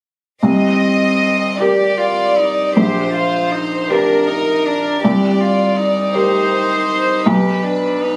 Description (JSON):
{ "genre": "neoclassical piano and strings", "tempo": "53 BPM (dotted quarters)", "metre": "6/8", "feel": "rubato", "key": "C minor", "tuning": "A4 = 440 Hz", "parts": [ { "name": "warm studio violin section", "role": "melody", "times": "0.4-8.2 s", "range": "Bb4 to Eb5", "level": "-20 LUFS", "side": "equal", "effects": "none" }, { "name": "rich cello", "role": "second line", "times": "0.4-8.2 s", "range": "C4 to G4", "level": "-22 LUFS", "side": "equal", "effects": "none" }, { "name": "felt-muted upright piano", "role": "accompaniment", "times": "0.4-8.2 s", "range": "Bb1 to Bb4", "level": "-19 LUFS", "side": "equal", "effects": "none" } ], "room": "moderate booth ambience, RT60 0.2 s", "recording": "recorded on a phone in the room, club reverb", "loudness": "-16 LUFS", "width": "mono", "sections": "0.4-8.2 A section", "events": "none", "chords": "0.4 Cm7; 2.8 Gm/Bb; 5.0 Cm7; 7.3 G/B", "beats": "| 0.44 1.61 | 2.77 3.91 | 5.05 6.15 | 7.27" }